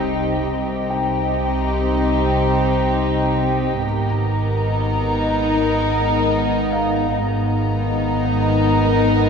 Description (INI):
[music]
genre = cinematic, suspense film score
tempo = 72 BPM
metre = 4/4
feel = straight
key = unclear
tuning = A4 = 440 Hz
[part]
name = warm studio violin section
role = melody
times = 0.0-9.3 s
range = G4 to Bb4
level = -26 LUFS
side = left 1 dB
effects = none
[part]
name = warm studio violin section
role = second line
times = 0.0-9.3 s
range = Eb4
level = -22 LUFS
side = left 3 dB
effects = none
[part]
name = warm studio viola section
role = accompaniment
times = 0.0-9.3 s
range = Cb4 to C4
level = -27 LUFS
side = left 1 dB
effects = none
[part]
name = evolving wavetable pad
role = sustained chords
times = 0.0-9.3 s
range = Cb4 to Bb5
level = -25 LUFS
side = equal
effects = chorus, built-in reverb
[part]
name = dark studio double bass section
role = bass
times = 0.0-9.3 s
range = Ab1 to C2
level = -26 LUFS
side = right 2 dB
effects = none
[part]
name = warm studio cello section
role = bass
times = 0.0-9.3 s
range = Ab2 to C3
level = -24 LUFS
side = right 2 dB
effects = none
[part]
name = deep rumbling drone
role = drone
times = 0.0-9.3 s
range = Ab1 to C2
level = -29 LUFS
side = right 1 dB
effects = built-in reverb
[part]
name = sub drop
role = sound effects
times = 0.3-0.5 s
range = none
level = -44 LUFS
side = equal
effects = none
[part]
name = felt-muted upright piano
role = texture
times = 0.0-9.3 s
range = Eb5 to Eb6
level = -29 LUFS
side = left 3 dB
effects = none
[sound]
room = wet scoring stage reverb, RT60 2.2 s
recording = heard from further back in the room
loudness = -17 LUFS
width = side -6 dB against mid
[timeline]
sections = 0.0-9.3 A section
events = impact 0.0-0.5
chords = 0.0 Cm; 3.8 Abmadd9